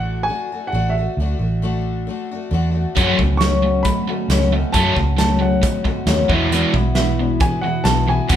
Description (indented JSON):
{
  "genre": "folk rock and heartland rock",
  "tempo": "135 BPM",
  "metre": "4/4",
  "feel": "straight",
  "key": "unclear",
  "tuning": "A4 = 440 Hz",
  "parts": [
    { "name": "dark baby grand piano", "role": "melody", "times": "0.0-8.4 s", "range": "E5 to C#6", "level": "-24 LUFS", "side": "right 2 dB", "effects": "none" },
    { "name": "picked twelve-string acoustic guitar", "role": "accompaniment", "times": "0.0-8.4 s", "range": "E2 to F#4", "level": "-22 LUFS", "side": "left 4 dB", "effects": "none" },
    { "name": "vintage muted fingered electric bass", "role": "bass", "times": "0.0-8.4 s", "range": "A1 to F#2", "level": "-20 LUFS", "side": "right 1 dB", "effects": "none" },
    { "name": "crunchy overdriven guitar", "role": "riff", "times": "3.0-8.4 s", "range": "E2 to C#4", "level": "-20 LUFS", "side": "right 1 dB", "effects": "none" },
    { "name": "loose indie drum kit", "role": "drums", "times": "3.0-8.4 s", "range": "hi-hat, kick drum, snare drum", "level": "-21 LUFS", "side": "right 1 dB", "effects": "none" }
  ],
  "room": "moderate large studio reverb, RT60 0.9 s",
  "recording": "band playing live in one room",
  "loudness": "-16 LUFS",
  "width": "side -10 dB against mid",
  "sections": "0.0-8.4 A section",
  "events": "none",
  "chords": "0.0 D; 3.0 F#m; 6.3 Esus2",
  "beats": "0.28 0.73 | 1.17 1.62 2.06 2.51 | 2.96 3.40 3.85 4.29 | 4.74 5.18 5.63 6.07 | 6.52 6.96 7.41 7.86 | 8.30"
}